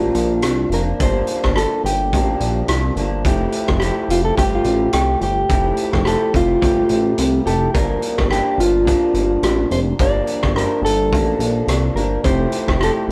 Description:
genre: indie pop, bedroom pop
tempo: 107 BPM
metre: 4/4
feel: swing 55% on 16ths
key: unclear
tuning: A4 = 440 Hz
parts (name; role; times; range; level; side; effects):
- mellow electric guitar; melody; 0.0-12.9 s; F4 to D5; -22 LUFS; equal; none
- electric guitar through a small old amp; accompaniment; 0.0-13.1 s; G2 to G4; -25 LUFS; equal; vibrato effect
- chorused synth bass; bass; 0.0-13.1 s; F1 to C2; -23 LUFS; equal; none
- loose indie drum kit; drums; 0.1-13.0 s; hi-hat, kick drum, rim click; -24 LUFS; equal; none
room: moderate stone room reverb, RT60 1.2 s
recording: band playing live in one room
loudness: -18 LUFS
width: mono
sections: 0.0-13.1 A section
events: none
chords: 0.0 Gm7; 3.2 Fmaj9; 7.7 Gm7; 12.2 Fmaj9

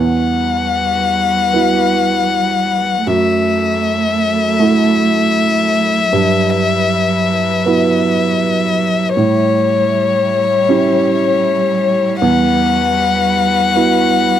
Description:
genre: neoclassical piano and strings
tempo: 78 BPM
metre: 4/4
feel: rubato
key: E dorian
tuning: A4 = 436 Hz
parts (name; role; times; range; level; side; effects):
- warm violin; melody; 0.0-14.4 s; C#5 to F#5; -15 LUFS; left 6 dB; none
- warm cello; second line; 0.0-14.4 s; F#3 to A3; -19 LUFS; right 4 dB; none
- dark upright piano; accompaniment; 0.0-14.4 s; E2 to G4; -17 LUFS; right 4 dB; none
- dark chamber string section; sustained chords; 0.0-14.4 s; F#3 to C#5; -25 LUFS; left 3 dB; none
room: moderate booth ambience, RT60 0.2 s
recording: dry, close 1970s-style studio recording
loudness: -12 LUFS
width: side -10 dB against mid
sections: 0.0-14.4 A section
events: none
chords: 0.0 Emadd9; 3.1 F#m7; 6.1 Emadd9/G; 9.2 A7; 12.2 Emadd9

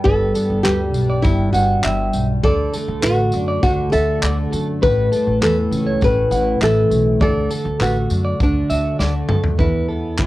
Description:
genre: acoustic pop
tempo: 101 BPM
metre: 4/4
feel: straight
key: D major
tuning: A4 = 436 Hz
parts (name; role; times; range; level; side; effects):
- flamenco guitar; melody; 0.0-10.3 s; D4 to B4; -20 LUFS; left 1 dB; cassette tape, analog delay
- picked steel-string acoustic guitar; accompaniment; 0.0-10.3 s; E2 to F#4; -22 LUFS; equal; double-tracked left and right, cassette tape
- clean electric guitar; arpeggios; 0.1-10.3 s; A4 to F#5; -24 LUFS; right 3 dB; cassette tape
- upright bass; bass; 0.1-10.3 s; G1 to F#2; -21 LUFS; equal; none
- natural country drum kit; drums; 0.1-10.3 s; handclaps, kick drum, snare drum, tambourine, toms; -21 LUFS; equal; cassette tape
- tambourine; percussion; 0.4-9.1 s; none; -38 LUFS; left 4 dB; none
room: light reverb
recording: home recording on cassette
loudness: -15 LUFS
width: side -17 dB against mid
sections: 0.1-9.6 A section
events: drum fill 9.0-9.6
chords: 0.1 G; 2.4 D; 4.8 A; 7.2 D; 9.6 E5

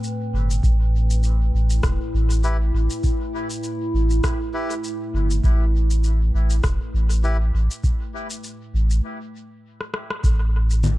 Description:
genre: ambient dub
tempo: 100 BPM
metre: 4/4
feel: swing 56% on 16ths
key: unclear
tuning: A4 = 440 Hz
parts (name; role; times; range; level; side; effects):
- warbly tape-like pad; sustained chords; 0.0-11.0 s; A2 to G5; -29 LUFS; equal; chorus, built-in reverb
- electronic shaker, rim click and congas; drums; 0.0-11.0 s; none; -30 LUFS; left 2 dB; dub echo
- soft dub sub bass; bass; 0.3-11.0 s; E1 to A1; -18 LUFS; equal; none
- electronic kick drum; drums; 0.6-10.4 s; none; -22 LUFS; equal; none
- melodica; stabs; 2.4-7.4 s; E4 to B4; -33 LUFS; left 3 dB; low-pass filter, dub echo
room: little or no reverb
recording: none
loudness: -19 LUFS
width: side -17 dB against mid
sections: 0.0-10.2 A section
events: break 9.0-10.2; drum fill 9.8-10.2; band accent 10.1-10.4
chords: 0.0 Am7; 0.6 Em; 10.2 N.C.

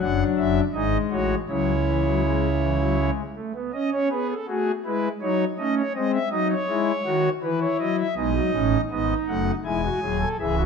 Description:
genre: classical, baroque-style 4-part fugue for pipe organ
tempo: 81 BPM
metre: 3/4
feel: straight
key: C# minor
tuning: A4 = 440 Hz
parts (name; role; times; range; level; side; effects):
- pipe organ, foundations; solo; 0.0-10.7 s; C#1 to G#5; -21 LUFS; left 1 dB; none
room: wet recital hall reverb, RT60 1.4 s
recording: none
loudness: -21 LUFS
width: side -6 dB against mid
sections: 0.0-3.7 A section; 3.7-8.2 B section; 8.2-10.7 A section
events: none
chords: 0.0 D/F#; 0.7 G#5; 1.5 C#m; 5.2 D#dim/F#; 6.0 G#; 7.4 C#m/E; 8.2 B; 9.7 E

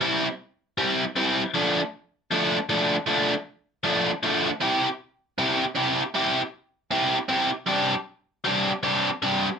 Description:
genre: rock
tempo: 156 BPM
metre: 4/4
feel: straight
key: C major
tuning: A4 = 438 Hz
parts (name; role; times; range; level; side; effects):
- biting overdriven guitar; solo; 0.0-9.5 s; F3 to G4; -21 LUFS; equal; none
room: light reverb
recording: rough home demo mix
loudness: -22 LUFS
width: side -6 dB against mid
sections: 0.0-4.6 A section; 4.6-9.6 A section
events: none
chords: 0.0 C; 1.6 Dm; 4.6 C; 7.5 Gsus4

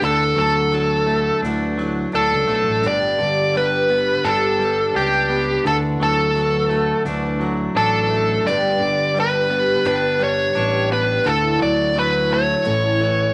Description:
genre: rock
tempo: 86 BPM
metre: 4/4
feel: straight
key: D major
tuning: A4 = 440 Hz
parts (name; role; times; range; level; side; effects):
- nasal lead guitar with a parked wah; melody; 0.0-13.3 s; G4 to D5; -20 LUFS; equal; overdrive
- picked twelve-string acoustic guitar; accompaniment; 0.0-13.3 s; G2 to A4; -29 LUFS; equal; none
- electric guitar at the edge of break-up; riff; 0.0-13.3 s; G2 to D4; -26 LUFS; equal; none
- modern bright fingered electric bass; bass; 0.0-13.3 s; G1 to D2; -28 LUFS; equal; none
room: moderate large studio reverb, RT60 1.2 s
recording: none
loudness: -19 LUFS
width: mono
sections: 0.0-13.3 A section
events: none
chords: 0.0 Dadd9; 2.8 G; 5.6 Dadd9; 8.5 G; 11.3 Dadd9; 12.7 A

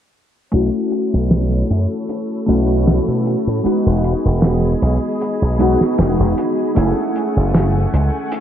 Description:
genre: vaporwave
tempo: 77 BPM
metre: 4/4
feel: swing 55% on 16ths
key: unclear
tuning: A4 = 442 Hz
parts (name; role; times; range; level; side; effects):
- warbly lo-fi synth keys; accompaniment; 0.5-8.4 s; G#3 to G#4; -18 LUFS; left 1 dB; lush chorus, vintage 12-bit sampler grit, tape echo
- bright symphonic string section; sustained chords; 0.5-8.4 s; A3 to G#5; -28 LUFS; equal; vintage 12-bit sampler grit, low-pass filter
- slap bass with an envelope filter; bass; 0.5-8.1 s; E1 to B2; -16 LUFS; equal; tube saturation
- cloth-damped thuddy drum kit; drums; 0.5-8.4 s; hi-hat, snare drum; -21 LUFS; equal; none
room: wet lush hall reverb, RT60 2.7 s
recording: dreamy mix soaked in reverb, low-pass filter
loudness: -14 LUFS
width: side -10 dB against mid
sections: 0.5-8.4 A section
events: filter sweep on string section 0.5-8.4; filter sweep 0.5-8.4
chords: 0.5 B9sus4; 3.7 Emaj7; 6.8 F#m9

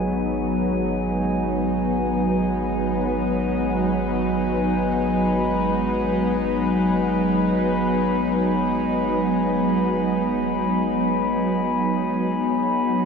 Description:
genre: ambient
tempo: free time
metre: none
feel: none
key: G# minor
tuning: A4 = 439 Hz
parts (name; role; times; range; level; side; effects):
- warm analog pad; sustained chords; 0.0-13.1 s; F#3 to B4; -21 LUFS; equal; chorus
- tine electric piano; arpeggios; 0.0-13.1 s; G#4 to B4; -38 LUFS; equal; none
- warm sub bass; bass; 0.0-13.1 s; G#1; -36 LUFS; equal; none
- bowed-like drone; drone; 0.0-13.1 s; G#3 to D#4; -28 LUFS; equal; built-in reverb
- glass harmonica; texture; 0.0-13.1 s; G#5 to B5; -27 LUFS; left 3 dB; none
room: wet huge ambient reverb, RT60 7.3 s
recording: in a vast, echoing space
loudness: -20 LUFS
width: side -5 dB against mid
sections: 0.0-13.1 A section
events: fade-out on sub bass 0.0-13.1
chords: 0.0 G#m7

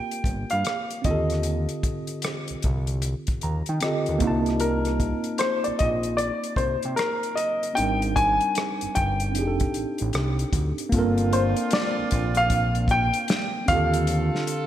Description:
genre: R&B, neo-soul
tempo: 76 BPM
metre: 4/4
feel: swing 64% on 16ths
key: G minor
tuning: A4 = 441 Hz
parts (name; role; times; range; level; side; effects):
- warm baby grand piano; melody; 0.0-14.7 s; Bb4 to Ab5; -26 LUFS; left 1 dB; slapback echo
- mellow tine electric piano; accompaniment; 0.0-14.7 s; D3 to Bb5; -28 LUFS; right 2 dB; medium stereo tremolo
- warm soul drum kit; drums; 0.1-14.7 s; hi-hat, kick drum, rim click, snare drum; -28 LUFS; equal; none
- fat analog bass; bass; 0.2-14.3 s; F1 to Eb3; -26 LUFS; equal; none
- warm horn section; stabs; 10.9-14.7 s; D3 to A4; -32 LUFS; right 3 dB; slapback echo
room: moderate concert hall reverb, RT60 1.9 s, small room ambience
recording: big arena sound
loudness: -22 LUFS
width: side -11 dB against mid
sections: 0.0-10.9 A section; 10.9-14.7 B section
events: tine electric piano fill 3.0-4.6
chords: 0.0 Gm11; 1.1 Ebmaj13; 4.2 Cm7; 7.8 Abmaj7; 9.3 F9; 10.9 Gm11; 13.7 Ebmaj13

